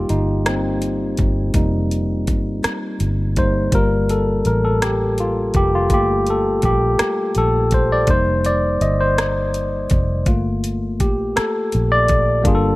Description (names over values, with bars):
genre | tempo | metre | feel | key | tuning
slow six-eight R&B | 55 BPM (dotted quarters) | 6/8 | straight | G minor | A4 = 441 Hz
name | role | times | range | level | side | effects
bright tine electric piano | accompaniment | 0.0-12.8 s | G3 to Eb5 | -18 LUFS | left 1 dB | none
vintage muted fingered electric bass | bass | 0.0-12.8 s | F1 to Bb1 | -21 LUFS | equal | none
smooth R&B drum kit | drums | 0.1-12.6 s | hi-hat, kick drum, rim click | -21 LUFS | equal | none
room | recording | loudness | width
little or no reverb | none | -16 LUFS | side -19 dB against mid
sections
0.0-12.4 A section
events
tine electric piano solo 0.0-12.4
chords
0.0 F9sus4; 3.7 Gm9; 8.1 F9sus4; 10.3 Gm9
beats
0.45 | 1.54 2.63 | 3.72 4.81 | 5.90 6.99 | 8.09 9.18 | 10.27 11.36 | 12.45